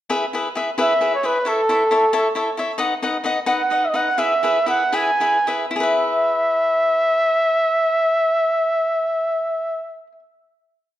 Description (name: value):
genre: mexican folk, mariachi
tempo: 68-90 BPM (dotted quarters)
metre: 6/8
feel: straight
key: E major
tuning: A4 = 440 Hz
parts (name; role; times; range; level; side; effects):
- cavaquinho; accompaniment; 0.1-10.2 s; D#4 to F#5; -22 LUFS; left 2 dB; none
- warm trumpet; melody; 0.8-10.0 s; A4 to G#5; -18 LUFS; equal; none
room: wet recital hall reverb, RT60 1.4 s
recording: none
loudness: -17 LUFS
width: side -13 dB against mid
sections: 0.1-5.8 A section; 5.8-9.2 final chord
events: slowing down 2.8-5.8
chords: 0.1 E; 1.5 A; 2.8 B; 4.2 E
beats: | 0.11 0.79 | 1.46 2.13 | 2.80 3.47 | 4.17 4.93 | 5.77 6.64 | 7.50 8.36